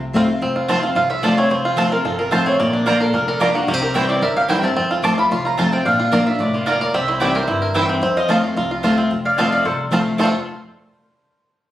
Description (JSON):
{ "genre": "bluegrass", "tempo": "221 BPM", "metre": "4/4", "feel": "straight", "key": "F major", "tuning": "A4 = 440 Hz", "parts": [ { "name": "picked steel-string acoustic guitar", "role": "accompaniment", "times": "0.0-10.3 s", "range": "F2 to F4", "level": "-20 LUFS", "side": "left 1 dB", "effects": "none" }, { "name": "upright bass", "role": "bass", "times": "0.0-10.3 s", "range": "F1 to F2", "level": "-31 LUFS", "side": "equal", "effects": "none" }, { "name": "bluegrass banjo", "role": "arpeggios", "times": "0.2-10.4 s", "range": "A3 to Bb4", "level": "-21 LUFS", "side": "right 1 dB", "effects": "none" }, { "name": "mandolin", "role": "stabs", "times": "0.7-10.3 s", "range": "Bb3 to Bb5", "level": "-21 LUFS", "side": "right 2 dB", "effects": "none" }, { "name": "mandolin", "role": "melody", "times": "1.0-10.3 s", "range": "F4 to D6", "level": "-21 LUFS", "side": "equal", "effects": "slapback echo, plate reverb" }, { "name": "lap resonator guitar", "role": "second line", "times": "9.3-10.3 s", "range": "A4 to D5", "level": "-26 LUFS", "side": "left 1 dB", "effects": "none" } ], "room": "moderate studio ambience, RT60 0.5 s", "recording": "recorded on a phone in the room, studio reverb", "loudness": "-15 LUFS", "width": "side -13 dB against mid", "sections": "0.4-9.1 A section; 9.1-10.2 B section; 10.2-11.3 C section", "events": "none", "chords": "0.4 F; 2.6 Bb; 3.7 C; 4.8 F; 5.9 Bb; 6.9 C; 8.0 F", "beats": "0.15 | 0.42 0.69 0.96 1.24 | 1.51 1.78 2.05 2.32 | 2.59 2.86 3.13 3.41 | 3.68 3.95 4.22 4.49 | 4.76 5.04 5.31 5.58 | 5.85 6.12 6.40 6.67 | 6.94 7.21 7.48 7.75 | 8.03 8.30 8.57 8.84 | 9.11 9.38 9.65 9.92 | 10.19" }